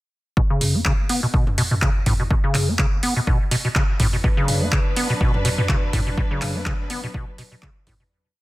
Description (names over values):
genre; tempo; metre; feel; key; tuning
acid house; 124 BPM; 4/4; swing 55% on 16ths; B minor; A4 = 440 Hz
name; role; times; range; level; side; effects
acid bass, square; riff; 0.4-8.0 s; A2 to B3; -23 LUFS; equal; tube saturation, wide subtle chorus, analog delay
electronic kick drum; drums; 0.4-8.0 s; none; -21 LUFS; equal; none
electro analog drum machine; drums; 0.6-8.0 s; handclaps, hi-hat, toms; -24 LUFS; equal; none
dark studio string section; sustained chords; 4.2-8.1 s; F#3 to B4; -29 LUFS; equal; sidechain pumping
room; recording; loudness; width
light reverb; dense, heavily limited modern master; -18 LUFS; side -18 dB against mid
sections
0.4-8.1 groove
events
fade-out 5.5-8.1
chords
0.4 Bm